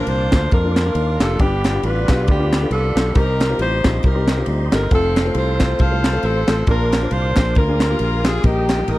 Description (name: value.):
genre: uptempo gospel.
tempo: 136 BPM.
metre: 4/4.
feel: swing 57% on 8ths.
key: Bb major.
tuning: A4 = 439 Hz.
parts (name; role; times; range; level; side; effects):
bright saxophone section; melody; 0.0-9.0 s; Bb3 to F5; -22 LUFS; equal; none.
dark upright piano; accompaniment; 0.0-9.0 s; G2 to C5; -24 LUFS; left 2 dB; none.
tonewheel organ; sustained chords; 0.0-9.0 s; G4 to Eb6; -31 LUFS; right 4 dB; slow rotary speaker, chorus vibrato.
fingered electric bass; bass; 0.1-9.0 s; F1 to F2; -20 LUFS; equal; none.
tight funk drum kit; drums; 0.1-9.0 s; kick drum, ride cymbal, snare drum; -18 LUFS; equal; none.
group handclap; percussion; 0.3-8.8 s; none; -33 LUFS; left 3 dB; none.
room: small room ambience.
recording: dry, close 1970s-style studio recording.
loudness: -15 LUFS.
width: side -17 dB against mid.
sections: 0.0-9.0 A section.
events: none.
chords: 0.0 Bb; 1.4 G7; 3.2 Cm; 4.9 F; 6.7 Bb; 7.6 Bb7/D; 8.4 Eb/Bb.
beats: 0.07 0.52 0.96 | 1.40 1.83 2.27 2.71 | 3.15 3.59 4.04 4.47 | 4.92 5.36 5.80 6.24 | 6.68 7.12 7.56 8.00 | 8.44 8.88.